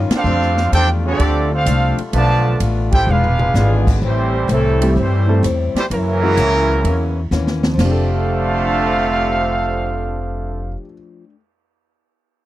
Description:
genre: jazz, big band swing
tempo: 127 BPM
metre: 4/4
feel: swing 68% on 8ths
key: F major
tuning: A4 = 440 Hz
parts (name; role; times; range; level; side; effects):
- picked steel-string acoustic guitar; accompaniment; 0.0-11.4 s; Gb2 to G4; -26 LUFS; left 6 dB; none
- muted trombone section; sustained chords; 0.0-4.0 s; D3 to F4; -30 LUFS; left 2 dB; none
- upright bass; bass; 0.0-10.7 s; E1 to G2; -18 LUFS; equal; none
- warm trumpet section; melody; 0.1-10.8 s; Gb3 to A5; -19 LUFS; right 1 dB; none
- bright trombone section; second line; 0.1-10.7 s; F2 to G4; -23 LUFS; right 4 dB; none
- swinging big-band drum kit; drums; 0.1-7.9 s; crash cymbal, hi-hat, kick drum, ride cymbal, snare drum, toms; -21 LUFS; equal; none
- warm concert grand piano; accompaniment; 4.8-10.9 s; F2 to A4; -23 LUFS; equal; none
room: little or no reverb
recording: dry, close 1970s-style studio recording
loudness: -14 LUFS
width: side -15 dB against mid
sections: 0.0-4.0 A section; 4.0-7.8 B section; 7.8-11.6 C section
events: band accent 0.0; drum fill 3.1-3.6, 7.3-7.8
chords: 0.3 F69; 2.1 Bm7b5; 3.1 E7b9; 4.0 Am7; 5.9 Gb7; 7.8 F69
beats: | 0.26 0.73 1.20 1.67 | 2.14 2.61 3.08 3.55 | 4.02 4.49 4.96 5.43 | 5.91 6.38 6.85 7.32 | 7.79 8.26 8.73 9.20 | 9.67 10.14 10.62 11.09

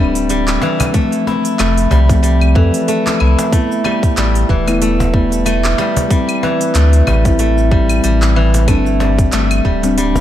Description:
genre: organic downtempo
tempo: 93 BPM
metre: 4/4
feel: swing 56% on 16ths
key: A minor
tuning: A4 = 440 Hz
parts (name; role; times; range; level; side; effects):
- muted felt-like synth keys; accompaniment; 0.0-10.2 s; F3 to A4; -18 LUFS; left 2 dB; chorus, sidechain pumping, tape echo
- steel-string zither; arpeggios; 0.0-10.2 s; E3 to E4; -17 LUFS; equal; vintage 12-bit sampler grit, tape echo
- warm sub bass; bass; 0.0-10.2 s; D1 to F2; -14 LUFS; equal; sidechain pumping
- organic electronic drum kit; drums; 0.2-10.2 s; cabasa, claves, handclaps, hi-hat; -22 LUFS; equal; overdrive
- cajon; percussion; 0.6-10.2 s; none; -23 LUFS; left 1 dB; none
- electronic kick drum; drums; 0.9-9.8 s; none; -15 LUFS; equal; overdrive
room: light reverb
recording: none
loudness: -11 LUFS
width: side -12 dB against mid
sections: 0.0-10.2 A section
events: none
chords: 0.0 Gsus4; 0.9 F; 3.5 Asus2; 6.1 D7sus4 (rootless); 8.7 Gsus4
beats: 0.30 | 0.94 1.59 2.23 2.88 | 3.52 4.17 4.81 5.46 | 6.11 6.75 7.39 8.04 | 8.69 9.33 9.98

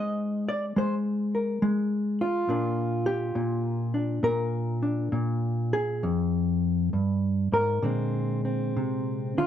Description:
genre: solo jazz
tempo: 68 BPM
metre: 4/4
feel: swing 66% on 8ths, rubato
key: Bb major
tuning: A4 = 440 Hz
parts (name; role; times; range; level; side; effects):
- hollow-body jazz guitar; solo; 0.0-9.5 s; F2 to Eb5; -25 LUFS; equal; none
room: light reverb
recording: dark, warm production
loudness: -25 LUFS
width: side -10 dB against mid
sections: 0.0-9.5 A section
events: none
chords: 0.0 Abadd9; 2.5 Bb6; 6.0 Fm; 7.8 Bb9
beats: 0.77 1.63 | 2.50 3.36 4.24 5.13 | 6.03 6.92 7.83 8.76

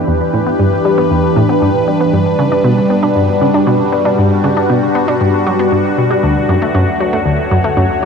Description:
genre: ambient, sequencer-driven space music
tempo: 117 BPM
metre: 4/4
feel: straight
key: unclear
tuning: A4 = 441 Hz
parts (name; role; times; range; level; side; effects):
- phased analog pad; sustained chords; 0.0-8.1 s; E3 to C#5; -13 LUFS; left 1 dB; phaser, chorus
- analog drone; bass; 0.0-8.1 s; D2 to G2; -33 LUFS; equal; none
- analog pluck; riff; 0.1-8.1 s; D2 to D4; -14 LUFS; equal; chorus, analog delay
room: wet huge ambient reverb, RT60 8.7 s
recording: dark, warm production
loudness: -10 LUFS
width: side -6 dB against mid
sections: 0.0-8.1 A section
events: none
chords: 0.0 Em7; 2.1 Gmaj7; 6.2 Dmaj7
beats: | 0.08 0.59 1.11 1.62 | 2.13 2.65 3.16 3.67 | 4.18 4.70 5.21 5.72 | 6.24 6.75 7.26 7.77

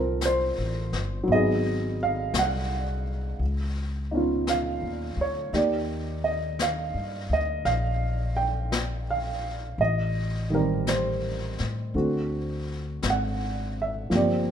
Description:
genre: jazz ballad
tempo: 56 BPM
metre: 4/4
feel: swing 68% on 8ths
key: unclear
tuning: A4 = 440 Hz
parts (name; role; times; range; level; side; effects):
- dark baby grand piano; accompaniment; 0.0-14.5 s; D3 to G5; -26 LUFS; right 2 dB; none
- upright bass; bass; 0.0-14.5 s; G1 to A2; -29 LUFS; left 1 dB; none
- vintage brush drum kit; drums; 0.2-14.5 s; brushed snare drum, hi-hat, snare drum; -34 LUFS; left 4 dB; none
room: light reverb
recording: minimal, uncompressed stereo recording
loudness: -24 LUFS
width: side -8 dB against mid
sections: 0.0-14.5 A section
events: none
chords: 0.0 Fmaj9; 1.3 Abm7; 3.4 Db9; 5.5 Ebmaj7; 9.8 Am7b5; 11.9 D7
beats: 0.21 | 1.28 2.34 3.41 4.47 | 5.53 6.60 7.66 8.73 | 9.79 10.87 11.94 13.02 | 14.10

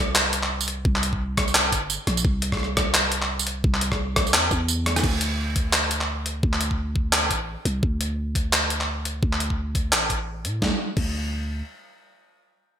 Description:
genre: half-time drum and bass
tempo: 172 BPM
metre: 4/4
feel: swing 58% on 16ths, half-time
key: unclear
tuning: A4 = 440 Hz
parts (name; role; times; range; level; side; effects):
- growling 808-style bass; bass; 0.0-11.6 s; G1 to A2; -27 LUFS; equal; none
- boom bap sampler-style drum kit; drums; 0.2-11.1 s; crash cymbal, handclaps, hi-hat, rim click, snare drum, tambourine; -22 LUFS; equal; gated reverb
- electronic kick drum; drums; 0.9-11.1 s; none; -26 LUFS; equal; none
room: light reverb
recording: bright 1980s-style digital production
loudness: -21 LUFS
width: side -9 dB against mid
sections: 0.0-5.0 A section; 5.0-10.6 B section; 10.6-12.8 C section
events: drop 0.0-5.0; drum fill 4.9; filter sweep on 808-style bass 5.0-10.6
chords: none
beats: 0.15 0.50 | 0.85 1.20 1.55 1.90 | 2.25 2.60 2.94 3.29 | 3.64 3.99 4.34 4.69 | 5.04 5.38 5.73 6.08 | 6.43 6.78 7.13 7.48 | 7.83 8.18 8.53 8.87 | 9.22 9.57 9.92 10.27 | 10.62 10.97 11.32

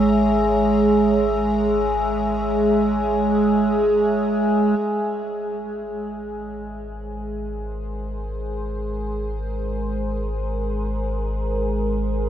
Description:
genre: ambient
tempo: free time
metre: none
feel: none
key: Ab major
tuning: A4 = 442 Hz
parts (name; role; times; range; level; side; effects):
- evolving wavetable pad; sustained chords; 0.0-12.3 s; Ab3 to Fb5; -20 LUFS; right 1 dB; chorus, built-in reverb
- warm sub bass; bass; 0.0-12.3 s; Ab1; -29 LUFS; left 1 dB; none
- warm symphonic violin section; texture; 0.0-4.8 s; Bb4 to Bb5; -41 LUFS; left 2 dB; none
room: wet huge ambient reverb, RT60 7.9 s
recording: none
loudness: -20 LUFS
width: side -10 dB against mid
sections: 0.0-4.8 A section; 4.8-12.3 B section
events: fade-out on violin section 0.0-4.8; fade-in on ambient pad 4.8-12.3; fade-in on sub bass 4.8-12.3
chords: 0.0 Dbm/Ab; 4.8 Abadd9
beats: free time

